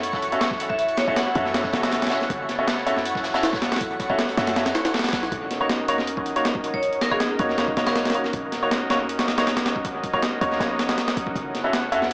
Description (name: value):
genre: drum and bass, jungle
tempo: 159 BPM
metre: 4/4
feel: straight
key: Eb minor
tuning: A4 = 440 Hz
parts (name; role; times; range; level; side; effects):
- warbly tape-like pad; sustained chords; 0.0-12.1 s; Db4 to Gb5; -31 LUFS; equal; chorus, built-in reverb
- warm 808-style bass; bass; 0.0-12.1 s; Eb1 to Gb2; -37 LUFS; equal; none
- breakbeat sampler-style drum kit; drums; 0.0-12.1 s; hi-hat, kick drum, snare drum; -28 LUFS; equal; small room ambience, dub echo
- crunchy breakbeat drum kit; drums; 0.0-5.2 s; hi-hat, snare drum; -37 LUFS; equal; none
- twinkling granular texture; texture; 0.0-5.3 s; Db6; -36 LUFS; equal; built-in reverb
- bright baby grand piano; stabs; 0.3-12.0 s; Bb3 to Fb5; -28 LUFS; equal; vintage 12-bit sampler grit, dub echo
- vibraphone with hard mallets; melody; 0.7-1.5, 6.7-8.2 s; Ab4 to Gb5; -30 LUFS; equal; vintage 12-bit sampler grit, dub echo
room: moderate spring reverb, RT60 1.2 s, studio ambience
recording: echo-heavy mix, vinyl crackle, small speaker sound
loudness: -23 LUFS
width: mono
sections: 0.0-5.3 A section; 5.3-12.1 A section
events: drop 0.0-5.3, 5.3-12.1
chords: 0.0 Gbm7; 5.3 Ebm7; 11.4 Gbm7